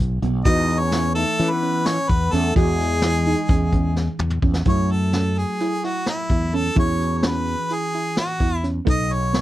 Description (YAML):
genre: progressive instrumental, band music in an uneven meter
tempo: 257 BPM (eighths)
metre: 9/8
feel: straight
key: unclear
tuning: A4 = 441 Hz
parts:
  - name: hollow-body jazz guitar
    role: accompaniment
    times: 0.0-9.4 s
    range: B2 to D#5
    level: -29 LUFS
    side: right 1 dB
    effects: double-tracked left and right
  - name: fretless electric bass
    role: bass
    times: 0.0-9.4 s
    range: B1 to E3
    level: -22 LUFS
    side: equal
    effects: none
  - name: soft round pluck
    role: arpeggios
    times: 0.2-9.4 s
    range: B3 to F#4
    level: -28 LUFS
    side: right 4 dB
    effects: chorus
  - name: vintage brush drum kit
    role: drums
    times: 0.2-9.4 s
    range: hi-hat, kick drum, snare drum, toms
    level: -22 LUFS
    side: equal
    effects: none
  - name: warm harmonica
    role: melody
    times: 0.5-9.4 s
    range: E4 to D#5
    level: -24 LUFS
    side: equal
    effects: none
  - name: breathy flugelhorn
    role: second line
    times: 0.5-4.2 s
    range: G#3 to D#4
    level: -29 LUFS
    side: left 6 dB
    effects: none
room: little or no reverb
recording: dry, close 1970s-style studio recording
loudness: -18 LUFS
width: side -14 dB against mid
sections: 0.0-4.7 A section; 4.7-9.4 B section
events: drum fill 4.0-4.7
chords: 0.5 Emaj7; 4.7 F#m7; 6.8 E69; 8.9 B7